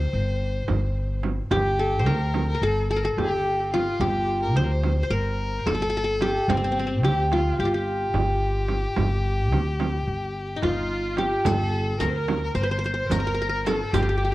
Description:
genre	Turkish makam ensemble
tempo	217 BPM (eighths)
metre	9/8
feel	straight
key	G makam ussak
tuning	A4 = 440 Hz
part	qanun	melody	0.0-14.3 s	C4 to C5	-26 LUFS	left 1 dB	tape echo
part	rich violin	second line	0.0-14.3 s	C4 to C5	-31 LUFS	left 2 dB	none
part	upright bass	bass	0.0-14.3 s	G1 to D2	-25 LUFS	equal	none
part	frame drum	percussion	0.7-14.1 s	none	-30 LUFS	right 4 dB	none
part	warm studio violin section	second line	10.6-14.3 s	F4 to C5	-32 LUFS	right 2 dB	none
part	riq	percussion	11.5-14.1 s	none	-37 LUFS	left 6 dB	none
room	moderate spring reverb, RT60 2.7 s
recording	cassette tape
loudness	-22 LUFS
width	side -17 dB against mid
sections	0.0-11.5 A section; 11.5-14.3 B section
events	none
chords	none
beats	0.13 0.41 0.68 0.96 1.24 | 1.51 1.79 2.07 2.34 2.62 2.90 3.17 3.45 3.72 | 4.00 4.28 4.55 4.83 5.10 5.38 5.66 5.93 6.21 | 6.49 6.76 7.04 7.31 7.59 7.87 8.14 8.42 8.69 | 8.97 9.24 9.52 9.80 10.07 10.35 10.62 10.90 11.18 | 11.45 11.73 12.00 12.28 12.55 12.83 13.11 13.38 13.66 | 13.93 14.21

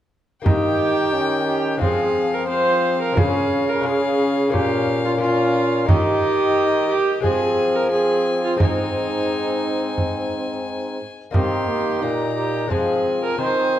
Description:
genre	classical, renaissance-style consort dance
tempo	88 BPM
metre	4/4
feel	straight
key	Eb mixolydian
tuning	A4 = 441 Hz
part	lute	accompaniment	0.4-13.8 s	Ab2 to Ab4	-27 LUFS	left 5 dB	none
part	warm violin	melody	0.5-13.8 s	Eb5 to C6	-30 LUFS	left 5 dB	none
part	warm viola	second line	0.5-13.8 s	Eb4 to C5	-22 LUFS	right 3 dB	none
part	brilliant trombone	accompaniment	0.5-13.8 s	Bb3 to Eb4	-25 LUFS	left 2 dB	none
part	warm bassoon	bass	0.5-13.8 s	Ab2 to F3	-25 LUFS	equal	none
part	frame drum	percussion	0.5-13.0 s	none	-21 LUFS	right 1 dB	none
room	wet recital hall reverb, RT60 1.6 s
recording	dark, warm production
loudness	-18 LUFS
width	side -11 dB against mid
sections	0.5-13.8 A section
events	none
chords	0.5 Eb; 1.8 Fm; 3.2 Db; 4.5 Bbm; 5.9 Eb; 7.2 Fm; 8.6 Ab; 11.3 Eb; 12.7 Fm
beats	| 0.46 1.14 1.81 2.49 | 3.17 3.85 4.53 5.21 | 5.88 6.56 7.24 7.92 | 8.60 9.29 9.98 10.66 | 11.35 12.03 12.71 13.39

